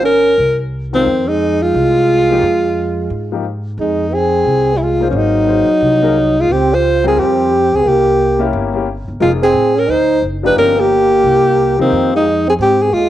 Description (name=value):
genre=jazz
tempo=177 BPM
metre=4/4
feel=swing 63% on 8ths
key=F minor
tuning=A4 = 440 Hz
part: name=clear alto saxophone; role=melody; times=0.0-13.1 s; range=C4 to C5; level=-12 LUFS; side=left 1 dB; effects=cassette tape
part: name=trombone with bucket mute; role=second line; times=0.0-13.1 s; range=Eb3 to F4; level=-18 LUFS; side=right 8 dB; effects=cassette tape
part: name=upright bass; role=bass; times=0.0-13.1 s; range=F1 to C3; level=-20 LUFS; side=equal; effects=none
part: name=warm grand piano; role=accompaniment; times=0.9-12.2 s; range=Eb3 to C5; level=-20 LUFS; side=left 8 dB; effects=cassette tape
room=moderate spring reverb, RT60 1.4 s, studio ambience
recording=home recording on cassette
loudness=-11 LUFS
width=side -12 dB against mid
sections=0.0-3.8 A section; 3.8-13.1 A section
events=none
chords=0.4 Cmadd11; 1.1 Fm7; 5.1 Ab9; 6.5 Dbmaj7; 7.9 C7b9; 9.2 Fm7; 9.9 D7b9; 10.6 Gm7b5; 11.2 C5; 11.9 Fm7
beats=0.04 0.38 0.72 | 1.06 1.40 1.74 2.08 | 2.42 2.76 3.10 3.44 | 3.78 4.12 4.46 4.80 | 5.14 5.48 5.82 6.16 | 6.50 6.84 7.18 7.51 | 7.85 8.19 8.53 8.87 | 9.21 9.55 9.89 10.23 | 10.56 10.90 11.24 11.58 | 11.92 12.26 12.60 12.93